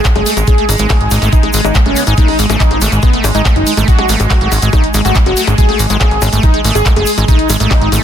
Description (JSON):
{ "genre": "psychedelic trance", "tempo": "141 BPM", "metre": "4/4", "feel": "straight", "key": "G# phrygian", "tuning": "A4 = 444 Hz", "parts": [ { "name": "wide unison lead", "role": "melody", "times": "0.0-7.9 s", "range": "B3 to G#4", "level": "-17 LUFS", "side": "left 1 dB", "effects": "phaser, sidechain pumping, ping-pong delay" }, { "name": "bubbling stepped-filter texture", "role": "sustained chords", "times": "0.0-8.0 s", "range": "G#3", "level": "-20 LUFS", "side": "right 3 dB", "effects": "chorus, built-in reverb, vintage 12-bit sampler grit, sidechain pumping" }, { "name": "drum and bass drum kit", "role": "drums", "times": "0.0-8.0 s", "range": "bongos, handclaps, hi-hat", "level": "-18 LUFS", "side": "left 3 dB", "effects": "none" }, { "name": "electronic kick drum", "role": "drums", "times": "0.0-7.8 s", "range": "none", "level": "-11 LUFS", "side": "equal", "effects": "none" }, { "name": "egg shaker", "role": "percussion", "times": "0.0-8.0 s", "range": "none", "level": "-23 LUFS", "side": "right 3 dB", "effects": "none" }, { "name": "screaming distorted acid line", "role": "riff", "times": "0.2-8.0 s", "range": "G#3 to D#4", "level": "-19 LUFS", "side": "moving between left 7 dB and right 6 dB", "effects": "distortion, chorus, auto-pan, sidechain pumping, tape echo" }, { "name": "plucky analog bass", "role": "bass", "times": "0.2-8.0 s", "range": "F#1 to G#1", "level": "-14 LUFS", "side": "equal", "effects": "none" }, { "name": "vowel-sweep wobble bass", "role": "second line", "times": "0.8-8.0 s", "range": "B3 to F#4", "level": "-29 LUFS", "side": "left 5 dB", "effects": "none" } ], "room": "digital ambience", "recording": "dense, heavily limited modern master", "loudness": "-9 LUFS", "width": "side -9 dB against mid", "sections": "0.0-8.0 A section", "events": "none", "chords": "0.0 G#5" }